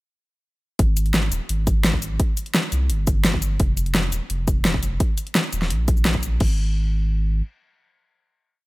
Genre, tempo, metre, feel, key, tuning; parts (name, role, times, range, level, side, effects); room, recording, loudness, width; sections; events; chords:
liquid drum and bass; 171 BPM; 4/4; straight; Ab major; A4 = 440 Hz
warm sub bass; bass; 0.8-7.4 s; Eb1 to C2; -22 LUFS; equal
electronic kick drum; drums; 0.8-6.5 s; -21 LUFS; equal
pop drum kit; drums; 0.8-6.5 s; crash cymbal, hi-hat, shaker, snare drum; -23 LUFS; equal
little or no reverb; -19 LUFS; side -20 dB against mid
0.8-6.4 drop; 6.4-8.7 final note
drop 0.8-6.4